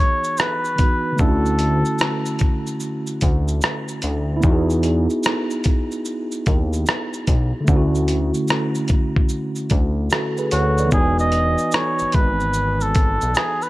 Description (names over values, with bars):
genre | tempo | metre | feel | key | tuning
lo-fi hip hop | 74 BPM | 4/4 | swing 66% on 16ths | E major | A4 = 438 Hz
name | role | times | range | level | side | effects
trumpet with cup mute | melody | 0.0-2.8, 10.5-13.7 s | F#4 to D#5 | -22 LUFS | equal | low-pass filter
mellow tine electric piano | accompaniment | 0.0-13.7 s | D3 to G#5 | -23 LUFS | right 1 dB | medium stereo tremolo, cassette tape, low-pass filter
dusty soul sampler-style drum kit | drums | 0.2-13.7 s | hi-hat, kick drum, rim click, shaker | -20 LUFS | equal | none
fat analog bass | bass | 1.2-13.4 s | E1 to E2 | -21 LUFS | equal | none
room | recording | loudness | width
light reverb | none | -17 LUFS | side -18 dB against mid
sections
0.0-10.9 A section; 10.9-13.7 B section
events
break 0.0-1.2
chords
0.0 Emaj7; 1.2 Dmaj7; 4.4 Emaj7; 7.7 Dmaj7; 10.9 Emaj7